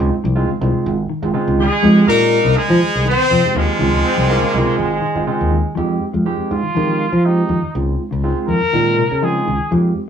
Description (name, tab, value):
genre	afrobeat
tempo	122 BPM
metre	4/4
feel	straight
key	unclear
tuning	A4 = 437 Hz
part	barky tine electric piano	accompaniment	0.0-10.0 s	Ab3 to G4	-22 LUFS	right 4 dB	medium stereo tremolo
part	fingered electric bass	bass	0.0-9.9 s	Ab1 to F3	-18 LUFS	equal	none
part	mellow electric guitar	arpeggios	0.2-9.9 s	C3 to Ab3	-21 LUFS	left 2 dB	none
part	warm horn section	melody	1.6-5.3 s	F3 to C5	-17 LUFS	left 3 dB	none
part	brilliant trumpet	second line	1.6-5.3 s	Ab3 to Eb4	-21 LUFS	right 2 dB	none
part	brilliant bass trombone	second line	4.0-5.7 s	Ab3 to C4	-21 LUFS	right 3 dB	none
part	breathy trumpet	melody	6.5-9.7 s	Eb4 to Bb4	-20 LUFS	left 2 dB	none
room	wet studio reverb, RT60 0.6 s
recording	band playing live in one room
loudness	-14 LUFS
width	side -8 dB against mid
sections	0.0-5.8 A section; 5.8-10.1 B section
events	trumpet solo 5.8-10.1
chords	0.0 Dbmaj9; 1.8 Fm7; 3.8 Dbmaj9; 5.8 Fm7; 7.7 Dbmaj9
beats	0.35 0.85 1.34 | 1.83 2.33 2.82 3.31 | 3.80 4.29 4.79 5.28 | 5.77 6.26 6.76 7.25 | 7.74 8.24 8.73 9.22 | 9.72